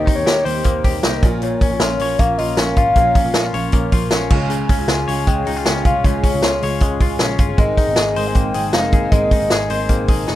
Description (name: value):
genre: jangly indie pop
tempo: 156 BPM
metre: 4/4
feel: straight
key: unclear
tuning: A4 = 440 Hz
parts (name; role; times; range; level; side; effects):
- hollow clarinet-like synth lead; melody; 0.0-10.3 s; C5 to Ab5; -21 LUFS; left 1 dB; chorus
- picked steel-string acoustic guitar; accompaniment; 0.0-10.4 s; Bb2 to Bb4; -27 LUFS; right 5 dB; none
- soft electric-piano-like synth keys; accompaniment; 0.0-10.4 s; C4 to F5; -30 LUFS; right 3 dB; none
- soft string machine; sustained chords; 0.0-10.4 s; Db3 to Ab4; -31 LUFS; equal; none
- direct-recorded clean electric guitar; arpeggios; 0.0-10.4 s; Bb2 to Db5; -23 LUFS; left 7 dB; none
- vintage muted picked electric bass; bass; 0.0-10.4 s; F1 to Eb2; -25 LUFS; equal; none
- vintage drum kit; drums; 0.1-10.4 s; crash cymbal, hi-hat, kick drum, snare drum; -17 LUFS; equal; none
room: light reverb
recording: rough home demo mix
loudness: -14 LUFS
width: side -14 dB against mid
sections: 0.0-10.4 A section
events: synth keys fill 9.9-10.4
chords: 0.0 Eb6; 1.2 Bbm; 4.3 Db; 7.6 Abadd9